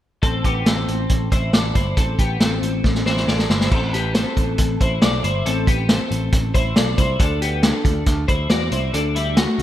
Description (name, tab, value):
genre	jangly indie pop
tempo	138 BPM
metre	4/4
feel	straight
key	A dorian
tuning	A4 = 442 Hz
part	twelve-string electric guitar	arpeggios	0.2-9.6 s	G3 to D5	-23 LUFS	left 2 dB	analog chorus, digital delay
part	picked electric bass	bass	0.2-9.6 s	G1 to E2	-23 LUFS	equal	none
part	vintage drum kit	drums	0.2-9.6 s	crash cymbal, hi-hat, kick drum, snare drum	-19 LUFS	equal	gated reverb
room	light reverb, small room ambience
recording	bright 1980s-style digital production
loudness	-17 LUFS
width	side -12 dB against mid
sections	0.2-3.7 A section; 3.7-9.6 B section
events	drum fill 2.8-3.7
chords	0.2 Am; 7.2 Dadd9